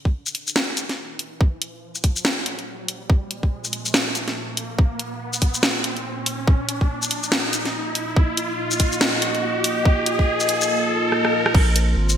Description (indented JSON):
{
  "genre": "deep dubstep",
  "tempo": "142 BPM",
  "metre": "4/4",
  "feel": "swing 59% on 16ths, half-time",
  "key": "unclear",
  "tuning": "A4 = 440 Hz",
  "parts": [
    { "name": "dark analog pad", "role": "sustained chords", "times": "1.7-12.2 s", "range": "Bb3 to Eb5", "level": "-27 LUFS", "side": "equal", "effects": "chorus, phaser" },
    { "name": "riser", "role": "sound effects", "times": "0.0-11.5 s", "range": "none", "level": "-27 LUFS", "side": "equal", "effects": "none" },
    { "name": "electronic kick drum", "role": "drums", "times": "0.1-11.6 s", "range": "none", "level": "-17 LUFS", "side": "equal", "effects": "none" },
    { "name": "garage drum kit", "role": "drums", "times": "0.3-12.2 s", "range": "crash cymbal, hi-hat, rim click, shaker, snare drum", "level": "-22 LUFS", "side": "equal", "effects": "gated reverb" },
    { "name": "saturated sub bass", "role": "bass", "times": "11.5-12.2 s", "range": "Ab1 to Bb1", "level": "-18 LUFS", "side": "equal", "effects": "none" }
  ],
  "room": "moderate lush hall reverb, RT60 2.0 s, digital ambience",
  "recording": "bright 1980s-style digital production",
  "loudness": "-19 LUFS",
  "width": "side -9 dB against mid",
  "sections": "0.0-11.5 A section",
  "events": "build-up 0.0-11.5; riser 0.0-11.5; filter sweep on analog synth pad 0.0-11.5; drum fill 11.1-11.5",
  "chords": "0.0 Bb5",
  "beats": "0.14 0.56 0.98 | 1.41 1.83 2.25 2.67 | 3.10 3.52 3.94 4.36 | 4.79 5.21 5.63 6.05 | 6.48 6.90 7.32 7.74 | 8.17 8.59 9.01 9.43 | 9.86 10.28 10.70 11.12 | 11.55 11.97"
}